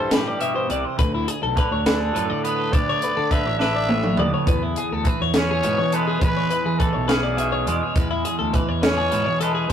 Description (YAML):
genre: math rock and midwest emo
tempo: 69 BPM (dotted quarters)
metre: 6/8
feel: straight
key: unclear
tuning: A4 = 443 Hz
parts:
  - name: growling trumpet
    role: melody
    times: 0.0-9.7 s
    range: G4 to E5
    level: -25 LUFS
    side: equal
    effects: none
  - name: twangy electric guitar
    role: accompaniment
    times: 0.0-9.7 s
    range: D2 to D4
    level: -26 LUFS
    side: right 3 dB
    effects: none
  - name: twelve-string electric guitar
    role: arpeggios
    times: 0.0-9.7 s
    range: E4 to E5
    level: -26 LUFS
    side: left 6 dB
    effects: none
  - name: fuzz fingered electric bass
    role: bass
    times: 0.0-9.7 s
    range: A1 to E3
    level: -26 LUFS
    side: right 1 dB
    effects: overdrive
  - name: compact cocktail drum kit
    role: drums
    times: 0.1-9.7 s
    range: hi-hat, kick drum, snare drum, toms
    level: -22 LUFS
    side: equal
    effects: none
room: moderate studio reverb, RT60 0.5 s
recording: rough rehearsal-room recording, tube saturation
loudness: -19 LUFS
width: side -8 dB against mid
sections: 0.0-9.7 A section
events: drum fill 3.6-4.5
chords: 0.0 Cmaj7; 1.0 Dsus2; 4.5 E6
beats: 0.11 | 0.98 1.86 | 2.73 3.60 | 4.47 5.35 | 6.22 7.09 | 7.96 8.83 | 9.70